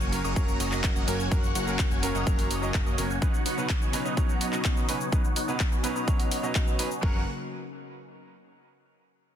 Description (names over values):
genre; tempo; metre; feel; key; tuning
EDM, festival progressive house; 126 BPM; 4/4; straight; F# major; A4 = 440 Hz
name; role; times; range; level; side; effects
lush unison pad; sustained chords; 0.0-7.3 s; C#3 to F#4; -37 LUFS; left 1 dB; chorus, vintage 12-bit sampler grit, sidechain pumping
big supersaw lead; riff; 0.0-7.2 s; A#3 to A#5; -32 LUFS; equal; phaser, sidechain pumping, low-pass filter, tape echo
fat analog bass; bass; 0.0-3.2, 7.0-7.3 s; F#1 to F#2; -33 LUFS; equal; tube saturation, sidechain pumping
big-room dance drum kit; drums; 0.0-7.0 s; handclaps, hi-hat, shaker; -33 LUFS; left 1 dB; overdrive
sub drop; sound effects; 0.2-1.3 s; none; barely audible; none; none
bright grand piano; accompaniment; 0.1-7.2 s; B2 to D#5; -34 LUFS; right 2 dB; sidechain pumping, tape echo
electronic kick drum; drums; 0.4-7.1 s; none; -26 LUFS; equal; overdrive
room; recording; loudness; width
little or no reverb; dense, heavily limited modern master; -24 LUFS; side -9 dB against mid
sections
0.0-7.0 A section; 7.0-8.9 B section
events
impact 0.0-1.3; filter sweep on supersaw synth 0.0-7.0; filter sweep on analog synth pad 0.0-7.0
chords
0.0 F#; 3.2 Badd9; 7.0 F#